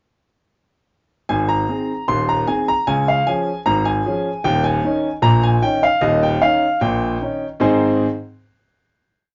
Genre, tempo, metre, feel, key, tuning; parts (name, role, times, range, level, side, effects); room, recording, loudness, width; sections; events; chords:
ragtime piano; 76 BPM; 2/4; straight; Ab major; A4 = 439 Hz
warm concert grand piano; solo; 1.3-8.1 s; Eb1 to C6; -18 LUFS; equal
moderate studio ambience, RT60 0.5 s; dark, warm production, nothing above 7.5 kHz; -18 LUFS; mono
1.3-7.6 A section; 7.6-9.2 final chord
1.3 Ab; 2.9 Db; 4.4 Eb7; 7.6 Ab